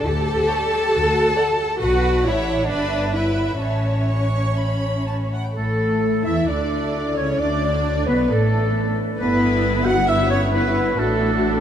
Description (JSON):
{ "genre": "quick classical-period movement for symphony orchestra", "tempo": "121-137 BPM", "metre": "4/4", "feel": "rubato", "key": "D major", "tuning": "A4 = 440 Hz", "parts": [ { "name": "rich chamber violin section", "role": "melody", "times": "0.0-11.6 s", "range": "A4 to A5", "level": "-30 LUFS", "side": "right 1 dB", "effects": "none" }, { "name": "rich studio viola section", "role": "accompaniment", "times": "0.0-11.6 s", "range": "A3 to C#5", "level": "-26 LUFS", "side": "left 1 dB", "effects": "none" }, { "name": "rich chamber cello section", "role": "bass", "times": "0.0-11.6 s", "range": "G2 to A4", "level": "-23 LUFS", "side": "equal", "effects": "none" }, { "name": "warm studio double bass section", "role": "bass", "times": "0.0-11.6 s", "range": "G1 to E2", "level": "-24 LUFS", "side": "equal", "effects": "none" }, { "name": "rich chamber violin section", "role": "second line", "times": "0.5-11.6 s", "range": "A4 to C#6", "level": "-30 LUFS", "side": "right 1 dB", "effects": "none" }, { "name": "mellow clarinet", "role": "second line", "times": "5.6-11.6 s", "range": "A4 to F#5", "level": "-30 LUFS", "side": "left 2 dB", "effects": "none" }, { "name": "silver concert flute", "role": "second line", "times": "5.6-11.6 s", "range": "A4 to F#5", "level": "-28 LUFS", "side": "right 2 dB", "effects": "none" }, { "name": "warm oboe", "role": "second line", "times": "5.6-11.6 s", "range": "A4 to F#5", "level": "-26 LUFS", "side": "equal", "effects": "none" }, { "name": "mellow French horn section", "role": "sustained chords", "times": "5.6-11.6 s", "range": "A3 to F#4", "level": "-24 LUFS", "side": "equal", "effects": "none" } ], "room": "moderate cathedral reverb, RT60 7.1 s", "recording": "in a vast, echoing space", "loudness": "-18 LUFS", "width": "side -9 dB against mid", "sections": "0.0-5.6 A section; 5.6-11.6 B section", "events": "none", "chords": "0.0 A7(no3)/D; 0.9 D; 1.8 Bm; 2.7 Em7/G; 3.6 A; 5.6 D5/A; 7.4 D5; 9.2 Em/G; 11.0 D/A" }